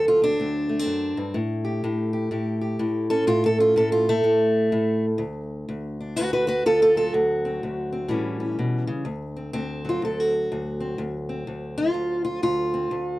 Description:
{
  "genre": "acoustic country blues, solo or duo",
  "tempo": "125 BPM",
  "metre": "4/4",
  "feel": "swing 61% on 8ths",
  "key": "D mixolydian",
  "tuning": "A4 = 440 Hz",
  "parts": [
    { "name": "fingerpicked steel-string acoustic guitar", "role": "solo", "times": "0.0-13.2 s", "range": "D2 to B4", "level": "-21 LUFS", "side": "equal", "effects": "none" }
  ],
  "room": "light reverb",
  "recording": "dry, close 1970s-style studio recording",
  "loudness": "-21 LUFS",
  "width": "side -17 dB against mid",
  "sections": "0.0-9.0 A section; 9.0-13.2 B section",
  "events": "steel-string acoustic guitar solo 0.0-9.0",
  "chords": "0.0 D7; 1.4 A7; 5.2 D7; 8.1 A7; 9.0 D7"
}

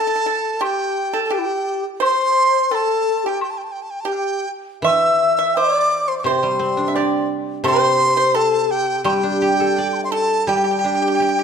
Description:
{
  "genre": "chinese traditional, Chinese chamber ensemble",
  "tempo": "85 BPM",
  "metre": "2/4",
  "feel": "straight",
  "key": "G zhi mode",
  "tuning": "A4 = 440 Hz",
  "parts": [
    { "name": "dizi", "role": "melody", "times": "0.0-11.4 s", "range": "G5 to E6", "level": "-20 LUFS", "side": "right 1 dB", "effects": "none" },
    { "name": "low xiao", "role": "second line", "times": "0.0-11.4 s", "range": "E4 to C6", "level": "-22 LUFS", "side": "left 4 dB", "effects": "none" },
    { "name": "pipa", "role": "second line", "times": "0.0-11.4 s", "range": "G4 to E5", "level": "-24 LUFS", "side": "right 7 dB", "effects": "none" },
    { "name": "woodblock", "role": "percussion", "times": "0.6-9.9 s", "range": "none", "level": "-28 LUFS", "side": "left 2 dB", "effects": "none" },
    { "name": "guzheng", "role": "accompaniment", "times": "4.8-11.4 s", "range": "C3 to D5", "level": "-22 LUFS", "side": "equal", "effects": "none" }
  ],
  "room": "moderate scoring stage reverb, RT60 1.8 s",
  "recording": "minimal, uncompressed stereo recording",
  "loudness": "-16 LUFS",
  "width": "side -7 dB against mid",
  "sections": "0.0-10.5 A section",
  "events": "none",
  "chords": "none"
}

